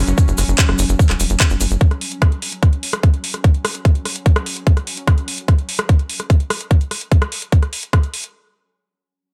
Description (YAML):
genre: psychedelic trance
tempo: 147 BPM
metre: 4/4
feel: straight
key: unclear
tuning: A4 = 440 Hz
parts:
  - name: pulsing gated texture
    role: sustained chords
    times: 0.0-5.1 s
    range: F#3 to C#4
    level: -31 LUFS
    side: equal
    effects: chorus, built-in reverb, sidechain pumping
  - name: tight sequencer bass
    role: bass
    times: 0.0-1.8 s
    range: E1 to F#1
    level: -20 LUFS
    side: equal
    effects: none
  - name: drum and bass drum kit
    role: drums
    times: 0.1-8.3 s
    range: handclaps, hi-hat, rim click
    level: -24 LUFS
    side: equal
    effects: none
  - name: tube shaker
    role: percussion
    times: 0.1-1.8 s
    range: none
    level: -29 LUFS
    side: equal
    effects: none
  - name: electronic kick drum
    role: drums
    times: 0.2-8.0 s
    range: none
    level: -15 LUFS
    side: equal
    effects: none
room: digital ambience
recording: none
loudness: -17 LUFS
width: mono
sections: 0.0-8.3 A section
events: none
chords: 0.0 F#5